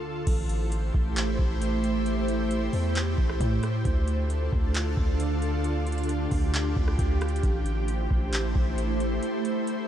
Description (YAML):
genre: hip hop, atmospheric cloud-rap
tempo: 134 BPM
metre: 4/4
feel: half-time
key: unclear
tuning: A4 = 440 Hz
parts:
  - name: ethereal airy pad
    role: sustained chords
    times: 0.0-9.9 s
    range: D2 to C5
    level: -29 LUFS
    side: right 1 dB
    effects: ensemble chorus, built-in reverb, sidechain pumping
  - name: long sustained 808-style bass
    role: bass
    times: 0.3-9.2 s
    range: A1 to A2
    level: -27 LUFS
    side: equal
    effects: none
  - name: booming analog drum machine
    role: drums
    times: 0.3-9.8 s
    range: crash cymbal, handclaps, hi-hat, kick drum, rim click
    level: -29 LUFS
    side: equal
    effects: overdrive, vintage 12-bit sampler grit
room: moderate huge ambient reverb, RT60 7.5 s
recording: dreamy mix soaked in reverb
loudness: -24 LUFS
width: side -10 dB against mid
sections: 0.3-9.9 A section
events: none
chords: 0.3 Am7; 3.9 Dm; 7.4 Am7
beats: | 0.27 0.72 1.17 1.61 | 2.06 2.51 2.96 3.40 | 3.85 4.30 4.75 5.20 | 5.64 6.09 6.54 6.99 | 7.43 7.88 8.33 8.78 | 9.22 9.67